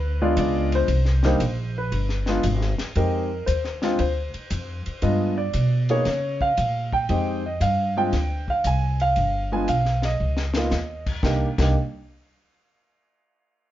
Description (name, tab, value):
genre	jazz piano trio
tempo	116 BPM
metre	4/4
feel	swing 68% on 8ths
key	C minor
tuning	A4 = 440 Hz
part	warm baby grand piano	melody	0.0-11.8 s	G3 to Ab5	-24 LUFS	equal	none
part	upright bass	bass	0.0-11.7 s	G1 to Db3	-24 LUFS	equal	none
part	compact cocktail drum kit	drums	0.4-11.7 s	crash cymbal, hi-hat, kick drum, ride cymbal, snare drum	-32 LUFS	left 2 dB	none
room	moderate studio reverb, RT60 0.7 s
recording	band playing live in one room, nothing above 7.5 kHz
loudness	-20 LUFS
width	side -13 dB against mid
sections	0.0-3.0 A section; 3.0-11.2 B section; 11.2-13.3 C section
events	drum fill 10.2-10.7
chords	0.0 G7b9 (rootless); 0.9 C7(no3); 1.9 G(b9); 3.0 Fm9; 4.0 Dm7; 5.0 G7b9; 6.1 Db6; 7.1 Fm9; 8.1 Fm69; 9.2 G7b9; 10.2 Dbsus2; 11.2 Cm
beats	0.37 | 0.89 1.40 1.92 2.44 | 2.95 3.47 3.99 4.51 | 5.02 5.54 6.06 6.58 | 7.09 7.61 8.13 8.65 | 9.16 9.68 10.20 10.72 | 11.24